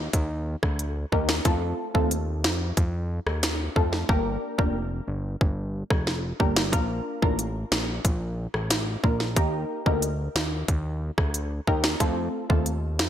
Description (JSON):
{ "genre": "dancehall", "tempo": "91 BPM", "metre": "4/4", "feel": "straight", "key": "unclear", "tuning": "A4 = 438 Hz", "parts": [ { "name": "fat analog bass", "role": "bass", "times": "0.0-13.1 s", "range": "F1 to F2", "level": "-29 LUFS", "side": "equal", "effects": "none" }, { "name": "island pop drum kit", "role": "drums", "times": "0.1-13.1 s", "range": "hi-hat, kick drum, rim click, snare drum", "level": "-24 LUFS", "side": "equal", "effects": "overdrive, gated reverb" }, { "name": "punchy chord stab", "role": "accompaniment", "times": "1.1-12.7 s", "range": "A3 to Bb4", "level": "-28 LUFS", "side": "equal", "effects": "chorus, phaser, sidechain pumping" } ], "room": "light reverb", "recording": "bright 1980s-style digital production", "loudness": "-23 LUFS", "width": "side -10 dB against mid", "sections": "0.0-13.1 A section", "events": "hi-hats muted 4.1-6.7", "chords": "0.0 Eb; 1.5 F; 4.1 Gm; 6.7 Bb; 9.4 Eb; 12.0 F" }